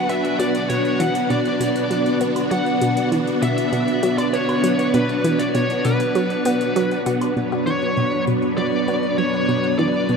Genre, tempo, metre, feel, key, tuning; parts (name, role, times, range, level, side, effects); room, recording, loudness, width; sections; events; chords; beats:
ambient, sequencer-driven space music; 99 BPM; 4/4; straight; A4 = 438 Hz
smooth overdriven lead guitar; melody; 0.0-10.2 s; B4 to F#5; -24 LUFS; left 1 dB; shimmer reverb, ping-pong delay
string machine, full ensemble; sustained chords; 0.0-10.2 s; F#3 to B4; -20 LUFS; equal; ensemble chorus
analog pluck; riff; 0.1-10.2 s; B2 to B3; -24 LUFS; equal; chorus, ping-pong delay
electronic hi-hat and woodblock; percussion; 0.1-10.2 s; -36 LUFS; right 2 dB
wet huge ambient reverb, RT60 8.0 s; -17 LUFS; side -5 dB against mid
0.0-7.4 A section; 7.4-10.2 B section
filter sweep on synth arpeggio sound 0.0-7.4, 7.4-10.2
0.0 Bm; 7.4 Bmadd9
| 0.09 0.70 1.30 1.91 | 2.52 3.12 3.73 4.33 | 4.94 5.54 6.15 6.76 | 7.36 7.97 8.58 9.18 | 9.79